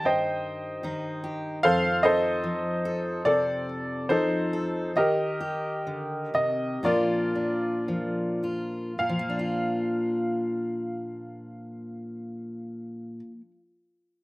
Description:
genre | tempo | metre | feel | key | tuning
acoustic folk-pop ballad | 52-76 BPM | 4/4 | straight | Bb major | A4 = 438 Hz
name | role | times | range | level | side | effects
bright upright piano | melody | 0.0-13.2 s | Eb4 to G5 | -26 LUFS | equal | none
fingerpicked steel-string acoustic guitar | accompaniment | 0.0-13.6 s | F2 to A4 | -30 LUFS | left 1 dB | slapback echo
room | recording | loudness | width
little or no reverb | recorded outdoors, with no room sound | -24 LUFS | side -20 dB against mid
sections
0.0-9.0 A section; 9.0-13.5 B section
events
slowing down 1.6-9.0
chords
0.0 Cm; 1.6 F7; 5.0 Eb; 6.8 Bb

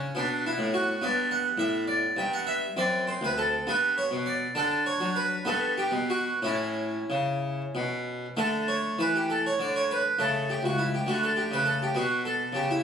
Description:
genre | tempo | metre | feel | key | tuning
classical, baroque-style suite movement for harpsichord | 59-71 BPM (dotted quarters) | 6/8 | rubato | D major | A4 = 440 Hz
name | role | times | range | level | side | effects
harpsichord | solo | 0.0-12.8 s | C#2 to G5 | -25 LUFS | equal | none
room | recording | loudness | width
wet stone room reverb, RT60 1.1 s | recorded on a phone in the room, studio reverb, compression | -25 LUFS | side -7 dB against mid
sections
0.0-8.4 A section; 8.4-12.8 A section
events
none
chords
0.1 D69; 1.0 G; 2.7 D7/F#; 3.6 G; 4.5 D; 5.4 Gmaj9; 6.4 A; 8.4 D5; 10.2 A/C#; 11.1 D5; 12.0 A13/B

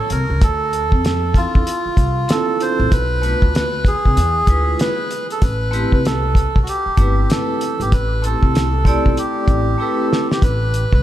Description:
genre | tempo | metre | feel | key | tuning
hip hop, jazz-hop | 96 BPM | 4/4 | swing 60% on 16ths | A minor | A4 = 438 Hz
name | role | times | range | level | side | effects
melodica | melody | 0.0-11.0 s | F4 to C5 | -21 LUFS | right 2 dB | diffuse ambient delay
upright bass | bass | 0.1-11.0 s | G1 to F2 | -20 LUFS | equal | none
cloth-damped thuddy drum kit | drums | 0.1-11.0 s | hi-hat, kick drum, snare drum | -17 LUFS | equal | none
vibraphone with medium hard mallets | accompaniment | 1.3-10.4 s | G#3 to D5 | -23 LUFS | equal | none
room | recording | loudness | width
moderate plate reverb, RT60 2.3 s | dreamy mix soaked in reverb | -15 LUFS | side -12 dB against mid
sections
0.0-10.4 A section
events
drum fill 9.8-10.4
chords
0.4 Dm9; 2.9 Bm7b5; 4.2 E7b9; 5.4 Am9; 10.4 Amadd9

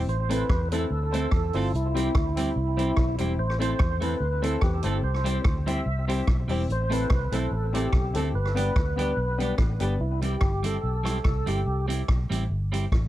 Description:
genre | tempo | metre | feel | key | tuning
ska | 145 BPM | 4/4 | straight | C major | A4 = 439 Hz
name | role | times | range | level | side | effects
warm upright piano | stabs | 0.0-10.0 s | B3 to C5 | -32 LUFS | left 4 dB | tape echo
vintage muted fingered electric bass | bass | 0.0-13.1 s | E1 to E2 | -27 LUFS | equal | none
tonewheel organ | melody | 0.1-11.9 s | E4 to E5 | -31 LUFS | right 1 dB | overdrive, chorus vibrato, slow rotary speaker, tape echo
vintage drum kit | drums | 0.1-13.0 s | hi-hat, kick drum, rim click | -27 LUFS | equal | none
clean electric guitar | accompaniment | 0.3-12.8 s | G3 to A4 | -32 LUFS | right 3 dB | none
room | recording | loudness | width
light reverb | dark, warm production | -23 LUFS | side -14 dB against mid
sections
0.0-10.0 A section; 10.0-13.1 B section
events
none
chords
0.1 Am; 1.7 C; 3.4 Am; 5.0 C; 6.7 Am; 8.3 G; 10.0 C

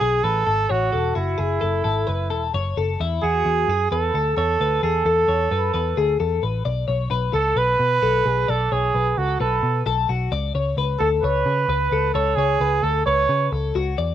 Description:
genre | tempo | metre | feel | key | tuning
jangly indie pop | 131 BPM | 4/4 | straight | A major | A4 = 441 Hz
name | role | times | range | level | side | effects
clear trumpet | melody | 0.0-13.5 s | E4 to C#5 | -21 LUFS | right 6 dB | none
twelve-string electric guitar | arpeggios | 0.0-14.1 s | E4 to D5 | -24 LUFS | left 8 dB | wide subtle chorus, cassette tape
vintage muted picked electric bass | bass | 0.0-14.1 s | E1 to C#3 | -24 LUFS | equal | none
room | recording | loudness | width
light reverb | home recording on cassette | -18 LUFS | side -11 dB against mid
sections
0.0-6.7 A section; 6.7-14.1 B section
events
none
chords
0.0 Amaj7; 3.0 E7sus4; 6.7 Bm7; 10.3 A/C#

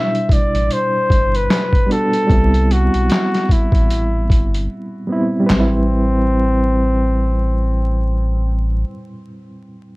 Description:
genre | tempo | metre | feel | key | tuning
lo-fi hip hop | 75 BPM | 4/4 | swing 58% on 16ths | A dorian | A4 = 441 Hz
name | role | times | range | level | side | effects
warm flugelhorn | melody | 0.0-8.8 s | C4 to E5 | -20 LUFS | left 1 dB | low-pass filter, analog delay
overdriven reed electric piano | accompaniment | 0.0-10.0 s | B2 to B4 | -21 LUFS | right 1 dB | fast tremolo, low-pass filter
boom bap sampler-style drum kit | drums | 0.1-5.7 s | handclaps, hi-hat, kick drum, snare drum, toms | -16 LUFS | equal | none
sub bass with octave | bass | 0.5-8.8 s | G1 to C2 | -17 LUFS | equal | none
room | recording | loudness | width
moderate small room reverb, RT60 0.5 s | dark, warm production, vinyl crackle | -14 LUFS | side -22 dB against mid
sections
0.0-5.5 A section; 5.5-8.7 B section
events
break 4.7-5.5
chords
0.0 Cmaj7; 2.3 Am9; 5.5 Am7

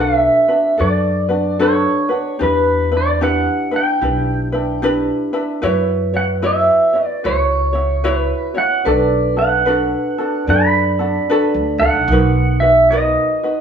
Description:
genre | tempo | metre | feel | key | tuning
Hawaiian | 74 BPM | 4/4 | swing 63% on 8ths | B minor | A4 = 441 Hz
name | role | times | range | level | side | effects
pedal steel guitar | melody | 0.0-13.6 s | B4 to B5 | -16 LUFS | right 1 dB | none
ukulele | accompaniment | 0.0-13.6 s | D4 to C#5 | -19 LUFS | left 1 dB | none
upright bass | bass | 0.0-13.1 s | B1 to F#2 | -20 LUFS | equal | none
vibraphone with medium hard mallets | second line | 5.6-13.6 s | D#4 to D5 | -22 LUFS | right 4 dB | none
room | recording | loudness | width
moderate large studio reverb, RT60 1.0 s | band playing live in one room | -14 LUFS | side -7 dB against mid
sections
0.0-12.1 A section; 12.1-13.6 B section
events
none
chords
0.0 Bm7; 2.4 Em7; 5.6 F#7sus4; 8.9 Bm7; 12.1 Bmaj7

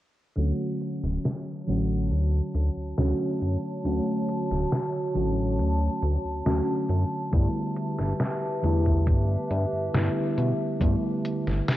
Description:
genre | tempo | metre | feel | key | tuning
vaporwave | 69 BPM | 4/4 | straight | D major | A4 = 440 Hz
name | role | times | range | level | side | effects
mellow FM electric piano | accompaniment | 0.4-11.8 s | D3 to F#4 | -28 LUFS | equal | phaser, lush chorus, tape echo
warbly tape-like pad | sustained chords | 1.4-11.8 s | F#4 to A5 | -32 LUFS | equal | chorus, built-in reverb
chorused synth bass | bass | 0.4-11.6 s | D1 to B2 | -25 LUFS | equal | none
detuned 8-bit digital drum machine | drums | 0.4-11.8 s | hi-hat, snare drum | -29 LUFS | equal | none
electronic kick drum | drums | 7.3-11.0 s | none | -25 LUFS | equal | none
room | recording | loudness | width
moderate lush hall reverb, RT60 2.1 s | worn, warbling old tape, cassette tape, warbly pitch drift, low-pass filter | -24 LUFS | side -14 dB against mid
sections
0.4-11.8 A section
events
filter sweep 0.4-11.8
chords
0.4 Dmaj7; 7.3 G69

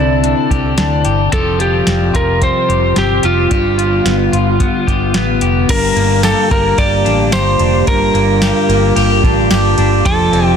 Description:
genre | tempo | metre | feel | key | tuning
dream pop | 110 BPM | 4/4 | straight | unclear | A4 = 440 Hz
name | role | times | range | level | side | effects
electric slide guitar | melody | 0.0-10.6 s | F4 to D5 | -17 LUFS | right 1 dB | ping-pong delay, shimmer reverb
warbly tape-like pad | sustained chords | 0.0-10.6 s | C3 to A4 | -19 LUFS | left 2 dB | chorus, built-in reverb, shimmer reverb
electric guitar at the edge of break-up | arpeggios | 0.0-10.6 s | G2 to G4 | -16 LUFS | left 2 dB | wide subtle chorus, ping-pong delay, shimmer reverb
vintage muted fingered electric bass | bass | 0.0-10.6 s | F1 to D2 | -17 LUFS | equal | none
soft vintage rhythm box | drums | 0.2-10.5 s | crash cymbal, hi-hat, kick drum, ride cymbal, snare drum, tambourine | -18 LUFS | equal | overdrive
room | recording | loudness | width
moderate scoring stage reverb, RT60 1.6 s, digital ambience | dense, heavily limited modern master | -10 LUFS | side -7 dB against mid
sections
0.0-5.7 A section; 5.7-10.6 B section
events
none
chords
0.0 Cadd9; 1.3 Fsus2; 3.5 G7; 5.7 Gm7; 10.1 F69

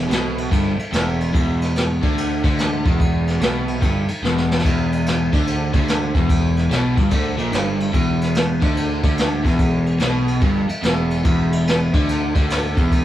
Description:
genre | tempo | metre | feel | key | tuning
blues rock power trio and southern rock | 145 BPM | 4/4 | swing 65% on 8ths | E minor | A4 = 442 Hz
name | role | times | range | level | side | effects
crunchy overdriven guitar | riff | 0.0-13.0 s | E2 to D3 | -20 LUFS | equal | none
picked electric bass | bass | 0.0-13.0 s | E1 to D2 | -25 LUFS | equal | none
jazz brush drum kit | drums | 0.1-13.0 s | crash cymbal, kick drum, ride cymbal, snare drum | -20 LUFS | equal | none
room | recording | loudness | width
light reverb | band playing live in one room | -16 LUFS | side -12 dB against mid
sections
0.0-13.0 A section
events
drum fill 4.2-4.6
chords
0.0 Em

